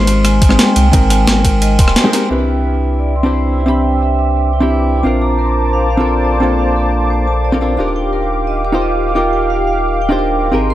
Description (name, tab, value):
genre	liquid drum and bass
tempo	175 BPM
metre	4/4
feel	straight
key	unclear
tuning	A4 = 440 Hz
part	hollow-body jazz guitar	accompaniment	0.0-10.7 s	Ab3 to B5	-17 LUFS	left 1 dB	digital delay
part	vibraphone with medium hard mallets	arpeggios	0.0-10.7 s	A4 to D6	-19 LUFS	right 3 dB	low-pass filter, tape echo
part	warm sub bass	bass	0.0-10.7 s	Eb1 to C2	-16 LUFS	equal	none
part	breakbeat sampler-style drum kit	drums	0.1-2.2 s	hi-hat, ride cymbal, rim click, snare drum	-16 LUFS	equal	overdrive, low-pass filter on hats, low-pass filter on cymbals, low-pass filter on snare, low-pass filter on room
part	electronic kick drum	drums	0.4-1.9 s	none	-12 LUFS	equal	overdrive
part	warm analog pad	sustained chords	2.3-10.7 s	G4 to D6	-20 LUFS	left 1 dB	chorus, tremolo
room	light reverb, digital ambience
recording	none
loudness	-11 LUFS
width	side -13 dB against mid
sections	0.0-2.3 A section; 2.3-10.7 B section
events	drop 0.0-2.3; band accent 2.0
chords	0.0 Abmaj9; 2.3 Cmaj9; 5.0 Bbmaj9; 7.8 Ebmaj9